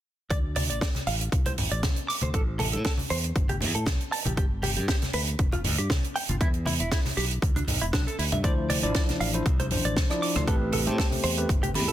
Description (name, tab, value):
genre	nu-disco, nu disco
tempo	118 BPM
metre	4/4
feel	swing 54% on 16ths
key	unclear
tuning	A4 = 440 Hz
part	direct-recorded clean electric guitar	riff	0.3-11.9 s	D4 to D6	-33 LUFS	right 1 dB	lush chorus, analog delay
part	modern bright fingered electric bass	bass	0.3-11.9 s	E1 to A2	-29 LUFS	equal	none
part	electronic kick drum	drums	0.3-11.6 s	none	-26 LUFS	equal	none
part	tight funk drum kit	drums	0.3-11.9 s	hi-hat, rim click, snare drum	-30 LUFS	right 3 dB	none
part	congas	percussion	0.6-11.9 s	none	-34 LUFS	left 1 dB	none
part	tine electric piano	accompaniment	8.4-11.9 s	F3 to B5	-29 LUFS	left 1 dB	sidechain pumping, analog delay
room	light reverb, small room ambience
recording	dense, heavily limited modern master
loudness	-24 LUFS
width	side -12 dB against mid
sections	0.3-11.9 A section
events	none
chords	0.3 D7(no3); 2.3 A7(no3); 4.4 G5; 6.4 E7(no3); 8.4 Dm9; 10.5 Am9